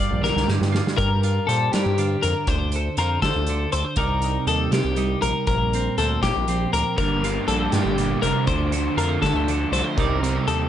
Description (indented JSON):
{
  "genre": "math rock and midwest emo",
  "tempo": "80 BPM (dotted quarters)",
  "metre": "6/8",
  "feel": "straight",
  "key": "G minor",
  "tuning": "A4 = 441 Hz",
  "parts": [
    { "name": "twelve-string electric guitar", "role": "accompaniment", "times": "0.0-10.7 s", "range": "G2 to Eb5", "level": "-26 LUFS", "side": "right 6 dB", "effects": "none" },
    { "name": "twelve-string electric guitar", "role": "arpeggios", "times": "0.0-10.7 s", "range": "G4 to D5", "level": "-24 LUFS", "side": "left 7 dB", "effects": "slapback echo" },
    { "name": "gritty driven synth bass", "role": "bass", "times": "0.1-10.7 s", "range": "F1 to G3", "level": "-25 LUFS", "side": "equal", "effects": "none" },
    { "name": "loose indie drum kit", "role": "drums", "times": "0.2-10.6 s", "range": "hi-hat, kick drum, snare drum", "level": "-28 LUFS", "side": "right 1 dB", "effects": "none" },
    { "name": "raw garage guitar", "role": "riff", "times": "7.0-10.7 s", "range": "C3 to Eb4", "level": "-26 LUFS", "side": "right 1 dB", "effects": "overdrive" }
  ],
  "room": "light reverb",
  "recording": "nothing above 10.5 kHz",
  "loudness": "-19 LUFS",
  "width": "side -10 dB against mid",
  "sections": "1.0-10.7 A section",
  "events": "drum fill 0.2-1.0",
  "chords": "0.0 Gm7; 2.5 Dm7; 4.0 Cm9; 5.5 Bb69; 7.0 Gm7; 8.5 Dm7; 10.0 Cm9"
}